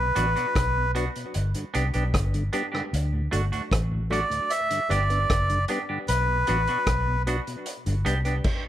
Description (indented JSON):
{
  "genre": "roots reggae",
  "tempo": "76 BPM",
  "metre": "4/4",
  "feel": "straight",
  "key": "unclear",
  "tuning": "A4 = 440 Hz",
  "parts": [
    { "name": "melodica", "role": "melody", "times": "0.0-7.2 s", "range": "B4 to E5", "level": "-26 LUFS", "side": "equal", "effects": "tape echo, plate reverb" },
    { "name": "mellow tonewheel organ", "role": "accompaniment", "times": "0.0-8.3 s", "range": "D2 to D4", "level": "-34 LUFS", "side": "left 2 dB", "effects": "chorus vibrato, slow rotary speaker, tape echo, plate reverb" },
    { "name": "vintage muted fingered electric bass", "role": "bass", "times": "0.0-8.4 s", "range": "F#1 to D2", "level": "-26 LUFS", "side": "equal", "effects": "none" },
    { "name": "semi-hollow electric guitar", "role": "accompaniment", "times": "0.2-8.3 s", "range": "A3 to G4", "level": "-32 LUFS", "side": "right 4 dB", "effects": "tape echo, plate reverb" },
    { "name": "vintage drum kit", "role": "drums", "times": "0.2-8.6 s", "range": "crash cymbal, hi-hat, kick drum, rim click", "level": "-29 LUFS", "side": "equal", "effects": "none" }
  ],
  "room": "light reverb",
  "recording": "none",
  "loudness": "-23 LUFS",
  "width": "side -12 dB against mid",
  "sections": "0.0-8.7 A section",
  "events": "none",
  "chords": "0.0 Bm; 1.4 G; 2.9 D; 4.5 G; 6.1 Bm; 7.7 G",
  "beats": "0.56 1.35 2.14 | 2.93 3.72 4.50 5.29 | 6.08 6.87 7.66 8.45"
}